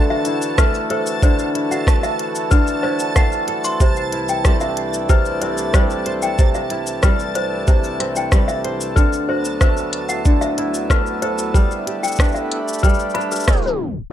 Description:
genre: folktronica.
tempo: 93 BPM.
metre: 4/4.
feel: straight.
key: C lydian.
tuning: A4 = 440 Hz.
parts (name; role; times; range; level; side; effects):
hand-pumped harmonium; sustained chords; 0.0-14.1 s; C2 to B5; -26 LUFS; equal; none.
kora; arpeggios; 0.0-14.1 s; C3 to C5; -23 LUFS; equal; low-pass filter, digital delay.
backwards swelling texture; texture; 0.0-14.1 s; A5; -29 LUFS; right 2 dB; built-in reverb.
toy piano; second line; 0.1-14.1 s; B4 to C6; -24 LUFS; left 2 dB; ping-pong delay.
organic electronic drum kit; drums; 0.2-13.9 s; hi-hat, rim click, shaker; -25 LUFS; left 1 dB; low-pass filter on perc, low-pass filter on hats, low-pass filter on snare, low-pass filter on room.
electronic kick drum; drums; 0.6-13.6 s; none; -15 LUFS; equal; none.
room: light reverb, small room reverb.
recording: dark, warm production, low-pass filter, tape stop.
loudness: -16 LUFS.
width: side -11 dB against mid.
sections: 0.0-14.1 A section.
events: band accent 13.5-13.8; tape stop 13.5-14.1.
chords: 0.0 Dadd9; 3.8 C; 9.0 Dadd9; 11.6 G.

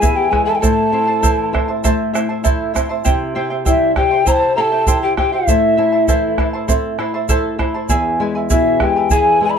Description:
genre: andean folk, Andean ensemble.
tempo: 99 BPM.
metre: 4/4.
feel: straight.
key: unclear.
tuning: A4 = 440 Hz.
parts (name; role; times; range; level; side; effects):
breathy mellow quena; melody; 0.0-9.6 s; E5 to B5; -16 LUFS; left 1 dB; none.
mellow hollow polished pan flute; second line; 0.0-9.6 s; E4 to D5; -20 LUFS; left 5 dB; none.
charango; accompaniment; 0.0-9.6 s; E4 to A5; -20 LUFS; right 4 dB; none.
flamenco guitar; accompaniment; 0.0-9.6 s; E2 to C5; -22 LUFS; left 6 dB; none.
bombo; percussion; 0.0-9.2 s; none; -18 LUFS; right 2 dB; none.
egg shaker; percussion; 0.0-9.2 s; none; -27 LUFS; right 7 dB; none.
room: light reverb.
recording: dark, warm production.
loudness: -13 LUFS.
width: side -7 dB against mid.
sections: 0.0-9.6 A section.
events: none.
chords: 0.0 E; 0.6 Am; 3.1 C; 5.5 Am; 7.9 E.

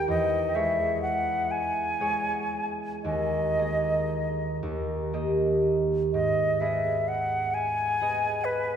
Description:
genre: classical, romantic duo for flute and harp.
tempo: 37-46 BPM (dotted quarters).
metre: 6/8.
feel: rubato.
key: G# minor.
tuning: A4 = 441 Hz.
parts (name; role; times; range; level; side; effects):
silver concert flute; melody; 0.0-8.8 s; B4 to G#5; -26 LUFS; equal; none.
concert harp; accompaniment; 0.0-8.8 s; D#2 to D#5; -28 LUFS; right 2 dB; none.
room: wet church reverb, RT60 3.5 s.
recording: recorded in a church or concert hall.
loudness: -24 LUFS.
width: side -8 dB against mid.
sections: 0.0-6.1 A section; 6.1-8.8 A section.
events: none.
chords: 0.1 C#m/E; 3.0 D#sus4; 4.6 D#; 6.1 G#m.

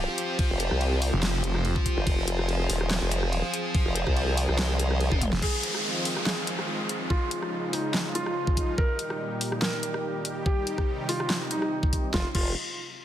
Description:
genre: heavy wobble dubstep.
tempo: 143 BPM.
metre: 4/4.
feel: swing 53% on 16ths, half-time.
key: F minor.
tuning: A4 = 442 Hz.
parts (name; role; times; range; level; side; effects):
supersaw pad; sustained chords; 0.0-12.3 s; Bb2 to Ab4; -34 LUFS; right 1 dB; sidechain pumping.
thick fuzz guitar; stabs; 0.0-5.2 s; F4 to F5; -31 LUFS; left 2 dB; distortion, dub echo.
formant-sweep wobble bass; bass; 0.0-5.3, 12.1-12.5 s; Eb1 to C2; -26 LUFS; equal; chorus, overdrive.
dubstep drum kit; drums; 0.2-12.4 s; crash cymbal, handclaps, hi-hat, ride cymbal, rim click, snare drum, toms; -31 LUFS; left 1 dB; overdrive.
electronic kick drum; drums; 0.4-12.4 s; none; -26 LUFS; equal; overdrive.
snarling distorted saw bass; bass; 1.1-1.7, 5.3-5.4 s; F1; -26 LUFS; equal; distortion, overdrive.
felt-muted upright piano; melody; 5.4-12.5 s; Eb4 to Bb4; -32 LUFS; equal; dub echo.
downlifter; sound effects; 5.4-8.8 s; none; -33 LUFS; equal; none.
room: light reverb, digital ambience.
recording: dense, heavily limited modern master.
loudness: -24 LUFS.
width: side -11 dB against mid.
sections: 0.0-5.4 A section; 5.4-12.1 B section.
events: drop 0.0-5.4; drum fill 5.1-5.4.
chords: 0.0 F5; 5.4 Fm7; 7.1 Dbadd9; 8.8 Eb; 10.5 Cm; 12.1 Fm7.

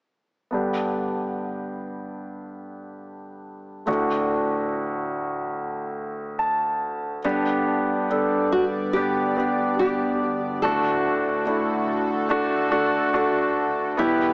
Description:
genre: pop.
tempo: 72 BPM.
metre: 4/4.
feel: straight.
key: G major.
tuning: A4 = 439 Hz.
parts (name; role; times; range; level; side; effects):
clear concert grand piano; accompaniment; 0.5-14.3 s; D2 to A5; -23 LUFS; equal; none.
nylon-string guitar; melody; 7.2-14.3 s; D4 to A4; -26 LUFS; equal; none.
chorused pulse-width pad; sustained chords; 7.2-14.3 s; D2 to D5; -28 LUFS; equal; none.
room: moderate lush hall reverb, RT60 2.8 s.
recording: small speaker sound.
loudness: -21 LUFS.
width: side -28 dB against mid.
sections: 0.5-7.2 A section; 7.2-14.3 B section.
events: grand piano fill 6.0-7.2.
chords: 0.5 G; 3.9 D; 7.2 G; 10.6 D.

